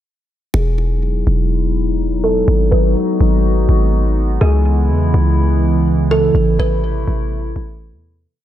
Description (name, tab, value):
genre	hip hop, atmospheric cloud-rap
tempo	124 BPM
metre	4/4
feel	half-time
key	E major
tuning	A4 = 441 Hz
part	kalimba	melody	0.5-6.8 s	G#4 to B4	-21 LUFS	right 1 dB	low-pass filter, digital delay
part	warbly tape-like pad	sustained chords	0.5-8.3 s	C3 to F#4	-19 LUFS	equal	chorus, built-in reverb, low-pass filter
part	warm 808-style bass	bass	0.5-8.3 s	E1 to E2	-15 LUFS	equal	none
room	little or no reverb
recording	none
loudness	-13 LUFS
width	side -12 dB against mid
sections	0.5-8.3 breakdown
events	fade-out 6.3-8.3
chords	0.5 Emaj9; 2.5 G#m7; 4.4 C#m7; 6.3 Amadd9